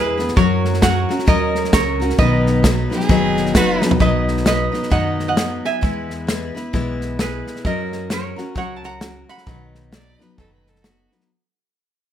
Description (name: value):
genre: honky-tonk and classic country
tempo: 132 BPM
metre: 4/4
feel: swing 60% on 8ths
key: B major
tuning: A4 = 438 Hz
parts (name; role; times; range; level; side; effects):
- lap resonator guitar; melody; 0.0-10.8 s; F#4 to B5; -22 LUFS; right 4 dB; none
- picked steel-string acoustic guitar; accompaniment; 0.0-11.3 s; B2 to B4; -21 LUFS; left 4 dB; none
- upright bass; bass; 0.0-11.1 s; F#1 to F#2; -24 LUFS; right 1 dB; none
- natural country drum kit; drums; 0.2-11.2 s; hi-hat, kick drum, snare drum, toms; -20 LUFS; equal; none
- clear fiddle; second line; 2.9-3.9, 9.9-11.1 s; F#4 to D5; -23 LUFS; right 3 dB; none
room: light reverb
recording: none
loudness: -16 LUFS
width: side -10 dB against mid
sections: 0.0-4.0 A section; 4.0-11.3 B section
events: drum fill 3.8; fade-out 4.0-11.3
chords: 0.4 F#; 2.2 B; 5.8 E; 7.6 F#; 9.5 B